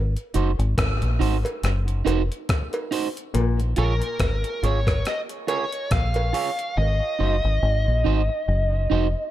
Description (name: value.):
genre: dub reggae.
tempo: 70 BPM.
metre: 4/4.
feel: swing 57% on 16ths.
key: unclear.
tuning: A4 = 440 Hz.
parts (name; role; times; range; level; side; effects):
deep dub fingered electric bass; bass; 0.0-9.1 s; F1 to Bb1; -22 LUFS; equal; none.
breakbeat sampler-style drum kit; drums; 0.2-6.8 s; hi-hat, kick drum, rim click; -27 LUFS; equal; none.
electric guitar at the edge of break-up; accompaniment; 0.3-9.1 s; Eb4 to Db5; -29 LUFS; right 9 dB; phaser, dub echo.
cowbell; percussion; 0.8-6.3 s; none; -34 LUFS; right 1 dB; dub echo.
mellow clav; riff; 3.3-3.6 s; Bb2; -31 LUFS; left 6 dB; dub echo.
bluesy overdriven lead guitar; melody; 3.8-9.3 s; Bb4 to F5; -26 LUFS; equal; distortion, dub echo.
room: digital ambience.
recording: none.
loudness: -21 LUFS.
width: side -13 dB against mid.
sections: 0.0-9.3 A section.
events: break 0.0-3.3; part muted 6.8-9.3.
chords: 0.0 Ab7; 3.3 Bbm7; 6.8 Ab7.